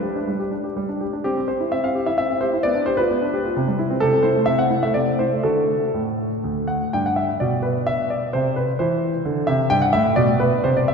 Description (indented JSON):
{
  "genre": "classical-period piano sonatina",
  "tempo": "119-133 BPM",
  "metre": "3/4",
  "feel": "rubato",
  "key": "C major, G major from 4.0 s",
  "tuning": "A4 = 440 Hz",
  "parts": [
    { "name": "clear concert grand piano", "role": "solo", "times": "0.0-10.9 s", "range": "D2 to G5", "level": "-18 LUFS", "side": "equal", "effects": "none" }
  ],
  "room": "wet church reverb, RT60 3.1 s",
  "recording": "none",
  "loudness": "-18 LUFS",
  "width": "side -5 dB against mid",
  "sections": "0.0-6.9 A section; 6.9-10.9 B section",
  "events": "none",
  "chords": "0.0 G; 1.2 C; 2.6 G7/B; 3.6 C; 4.0 Am/C; 5.4 D; 6.9 G; 8.3 C; 9.7 G",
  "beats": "0.27 0.76 | 1.24 1.72 2.19 | 2.64 3.10 3.56 | 4.01 4.47 4.95 | 5.44 5.94 6.44 | 6.93 7.41 7.88 | 8.35 8.80 9.26 | 9.71 10.18 10.65"
}